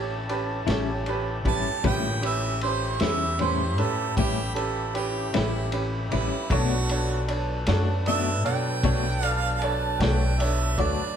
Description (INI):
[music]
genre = slow blues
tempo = 51 BPM (dotted quarters)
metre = 12/8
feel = straight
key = unclear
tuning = A4 = 441 Hz
[part]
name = bright upright piano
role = accompaniment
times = 0.0-11.1 s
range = C#4 to D5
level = -31 LUFS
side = right 4 dB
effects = none
[part]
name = mellow horn section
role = sustained chords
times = 0.0-11.2 s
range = C#4 to B5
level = -38 LUFS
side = equal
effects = none
[part]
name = tonewheel organ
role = sustained chords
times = 0.0-11.1 s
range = D3 to B4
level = -35 LUFS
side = left 1 dB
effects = overdrive, chorus vibrato, slow rotary speaker
[part]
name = upright bass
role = bass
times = 0.0-11.0 s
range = A1 to B2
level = -27 LUFS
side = equal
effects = none
[part]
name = vintage drum kit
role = drums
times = 0.3-11.0 s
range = kick drum, ride cymbal, snare drum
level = -32 LUFS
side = left 1 dB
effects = none
[part]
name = clean electric guitar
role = accompaniment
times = 0.7-11.0 s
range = A2 to F#4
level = -31 LUFS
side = left 7 dB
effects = tremolo
[part]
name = clear harmonica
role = second line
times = 1.5-11.2 s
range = E4 to A5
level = -29 LUFS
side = right 4 dB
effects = none
[sound]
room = moderate large studio reverb, RT60 1.3 s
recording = band playing live in one room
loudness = -23 LUFS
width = side -8 dB against mid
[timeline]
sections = 0.0-11.2 A section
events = harmonica solo 0.0-11.2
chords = 0.0 A7; 6.5 Bm7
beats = 0.67 | 1.84 3.00 4.17 5.34 | 6.50 7.67 8.84 10.00